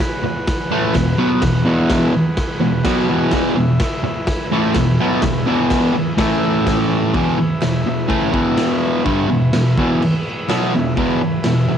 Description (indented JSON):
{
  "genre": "garage rock duo or trio",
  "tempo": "126 BPM",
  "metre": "4/4",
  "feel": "straight",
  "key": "E major",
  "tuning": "A4 = 440 Hz",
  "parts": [
    { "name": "combo organ", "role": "sustained chords", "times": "0.0-11.8 s", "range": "E4 to F#5", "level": "-28 LUFS", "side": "equal", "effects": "cassette tape" },
    { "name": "raw garage drum kit", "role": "drums", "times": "0.0-11.6 s", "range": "crash cymbal, kick drum, snare drum", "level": "-22 LUFS", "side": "equal", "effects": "cassette tape" },
    { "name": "group handclap", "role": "percussion", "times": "0.0-11.6 s", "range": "none", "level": "-39 LUFS", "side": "right 10 dB", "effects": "none" },
    { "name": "fuzz guitar", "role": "riff", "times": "0.2-11.8 s", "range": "E2 to B3", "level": "-16 LUFS", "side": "equal", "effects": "distortion, cassette tape" }
  ],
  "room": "light reverb, small room ambience",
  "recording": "home recording on cassette",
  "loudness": "-15 LUFS",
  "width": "side -8 dB against mid",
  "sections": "0.0-7.2 A section; 7.2-11.8 B section",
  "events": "none",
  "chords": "0.0 E; 6.2 A5; 7.2 E"
}